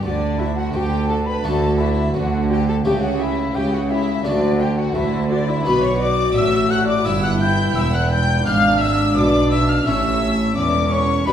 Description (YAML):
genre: classical, baroque-style concerto movement with solo episodes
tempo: 86 BPM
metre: 4/4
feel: straight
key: unclear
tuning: A4 = 441 Hz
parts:
  - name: bright concert flute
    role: melody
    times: 0.0-11.3 s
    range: D5 to G6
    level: -25 LUFS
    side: left 4 dB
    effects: none
  - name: warm chamber violin section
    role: melody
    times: 0.0-11.3 s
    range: D5 to G6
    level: -29 LUFS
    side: left 3 dB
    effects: none
  - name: rich chamber violin section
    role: second line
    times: 0.0-11.3 s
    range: D4 to G5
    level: -25 LUFS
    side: left 2 dB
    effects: none
  - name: dark chamber viola section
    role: accompaniment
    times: 0.0-11.3 s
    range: C#4 to G4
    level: -24 LUFS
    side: equal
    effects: none
  - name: harpsichord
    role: accompaniment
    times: 0.0-11.3 s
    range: E2 to B4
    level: -26 LUFS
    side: left 2 dB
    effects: none
  - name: warm chamber cello section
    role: bass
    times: 0.0-11.3 s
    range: E2 to D3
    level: -24 LUFS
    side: right 1 dB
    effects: none
  - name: warm studio double bass section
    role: bass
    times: 0.0-11.3 s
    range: E1 to D2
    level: -21 LUFS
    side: right 2 dB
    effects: none
room: wet recital hall reverb, RT60 1.5 s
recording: heard from further back in the room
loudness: -16 LUFS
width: side -9 dB against mid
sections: 0.0-11.3 A section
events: none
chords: 0.0 D; 2.9 A7/C#; 4.3 D; 5.7 Bm; 7.1 Em/G; 8.5 G#dim; 9.9 A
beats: | 0.04 0.74 1.44 2.15 | 2.85 3.55 4.25 4.95 | 5.65 6.36 7.06 7.76 | 8.46 9.16 9.86 10.56 | 11.27